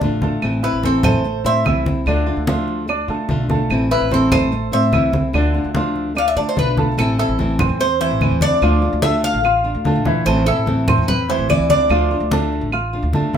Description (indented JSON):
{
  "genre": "latin, Cuban son and guajira",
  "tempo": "146 BPM",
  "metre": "4/4",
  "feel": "straight",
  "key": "A minor",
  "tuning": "A4 = 442 Hz",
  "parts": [
    { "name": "nylon-string guitar", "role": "accompaniment", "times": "0.0-13.4 s", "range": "D3 to F4", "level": "-22 LUFS", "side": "left 2 dB", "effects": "none" },
    { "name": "warm concert grand piano", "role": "arpeggios", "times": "0.0-13.4 s", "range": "D3 to F6", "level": "-22 LUFS", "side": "right 3 dB", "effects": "none" },
    { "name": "upright bass", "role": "bass", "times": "0.0-13.4 s", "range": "G1 to D3", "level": "-22 LUFS", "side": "equal", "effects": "none" },
    { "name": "congas", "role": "percussion", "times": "0.0-13.4 s", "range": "none", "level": "-21 LUFS", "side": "equal", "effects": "none" },
    { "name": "claves", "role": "percussion", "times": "0.4-12.9 s", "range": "none", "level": "-26 LUFS", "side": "right 4 dB", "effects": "none" },
    { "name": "Cuban tres", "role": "melody", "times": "0.6-12.5 s", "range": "A4 to F5", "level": "-20 LUFS", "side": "left 1 dB", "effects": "none" }
  ],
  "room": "wet studio reverb, RT60 0.6 s",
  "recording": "minimal, uncompressed stereo recording",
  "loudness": "-15 LUFS",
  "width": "side -8 dB against mid",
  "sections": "0.0-7.0 A section; 7.0-13.4 B section",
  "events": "Cuban tres solo 0.0-7.0",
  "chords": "0.4 Am; 2.1 Dm; 3.7 Am; 5.3 Dm; 7.0 Am; 8.6 Dm; 10.3 Am; 11.9 Dm"
}